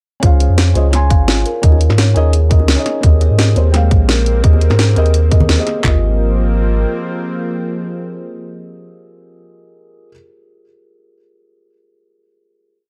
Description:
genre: liquid drum and bass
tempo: 171 BPM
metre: 4/4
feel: swing 53% on 16ths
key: Ab major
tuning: A4 = 441 Hz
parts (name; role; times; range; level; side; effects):
- felt-muted upright piano; accompaniment; 0.2-10.1 s; Ab3 to C6; -25 LUFS; equal; digital delay
- kalimba; arpeggios; 0.2-6.0 s; F4 to F5; -27 LUFS; equal; digital delay
- warm sub bass; bass; 0.2-6.9 s; Ab1 to Ab2; -15 LUFS; equal; none
- garage drum kit; drums; 0.2-5.9 s; handclaps, kick drum, toms; -13 LUFS; equal; none
- garage drum kit; drums; 0.2-5.7 s; hi-hat, snare drum; -20 LUFS; equal; none
- bongos and congas; percussion; 0.8-5.5 s; none; -23 LUFS; equal; none
- lush unison pad; sustained chords; 3.0-9.4 s; F3 to C4; -25 LUFS; equal; chorus, sidechain pumping
room: little or no reverb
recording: dark, warm production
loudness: -13 LUFS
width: mono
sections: 0.2-5.8 drop; 5.8-8.6 final chord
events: drop 0.2-5.8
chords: 0.2 Dbmaj7; 1.5 Eb7sus4; 3.0 Abmaj9; 5.8 Ab69

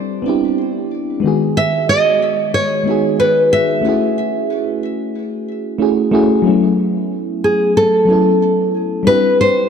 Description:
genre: chillout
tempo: 92 BPM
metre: 4/4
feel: swing 55% on 16ths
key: A lydian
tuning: A4 = 440 Hz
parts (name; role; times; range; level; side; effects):
- mellow FM electric piano; accompaniment; 0.0-9.7 s; D#3 to A4; -16 LUFS; moving between left 4 dB and right 6 dB; chorus, auto-pan, digital delay
- nylon-string guitar; melody; 1.6-9.7 s; G#4 to E5; -14 LUFS; equal; digital delay
room: moderate lush hall reverb, RT60 2.5 s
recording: dark, warm production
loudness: -13 LUFS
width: side -7 dB against mid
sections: 0.0-9.7 A section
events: none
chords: 0.0 Cmaj9; 1.2 G#m7; 3.8 F#m7; 6.5 A69; 9.1 Cmaj9

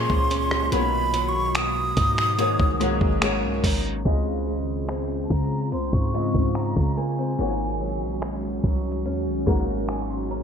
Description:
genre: contemporary R&B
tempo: 72 BPM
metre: 4/4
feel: straight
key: Db major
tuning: A4 = 441 Hz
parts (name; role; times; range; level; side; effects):
- breathy mellow silver concert flute; melody; 0.0-8.2 s; Ab5 to Eb6; -27 LUFS; right 1 dB; none
- clear grand piano; accompaniment; 0.0-10.4 s; Ab2 to C6; -29 LUFS; left 3 dB; analog chorus
- glassy FM pad; sustained chords; 0.0-10.4 s; Bb2 to Gb4; -30 LUFS; left 1 dB; ensemble chorus, built-in reverb
- picked steel-string acoustic guitar; arpeggios; 0.0-10.4 s; Ab2 to F4; -32 LUFS; right 2 dB; digital delay
- warm 808-style bass; bass; 0.0-10.4 s; Ab1 to Db3; -28 LUFS; equal; none
- dusty soul sampler-style drum kit; drums; 0.1-10.4 s; finger snaps, hi-hat, kick drum, rim click; -25 LUFS; equal; gated reverb
room: moderate plate reverb, RT60 3.0 s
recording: bright 1980s-style digital production, low-pass filter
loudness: -21 LUFS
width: side -7 dB against mid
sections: 0.0-4.1 A section; 4.1-10.4 B section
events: none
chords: 0.0 Bbm7; 0.7 Cbmaj7; 2.4 Ab7sus4; 4.1 Dbmaj7; 7.4 Ab7sus4

